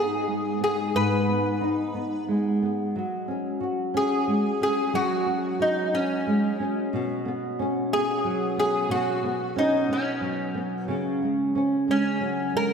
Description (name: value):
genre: pop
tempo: 60 BPM (dotted quarters)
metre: 6/8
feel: straight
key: unclear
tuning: A4 = 440 Hz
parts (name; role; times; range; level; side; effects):
- metal-body resonator slide guitar; melody; 0.0-12.7 s; C#4 to B4; -26 LUFS; equal; analog chorus, diffuse ambient delay
- flamenco guitar; accompaniment; 0.0-12.7 s; G#2 to F#4; -25 LUFS; equal; double-tracked left and right
room: wet lush hall reverb, RT60 2.7 s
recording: dreamy mix soaked in reverb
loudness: -23 LUFS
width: side -6 dB against mid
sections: 0.0-12.7 A section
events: none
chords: 0.0 G#m; 2.9 F#sus2; 6.9 Bsus2; 10.9 C#sus4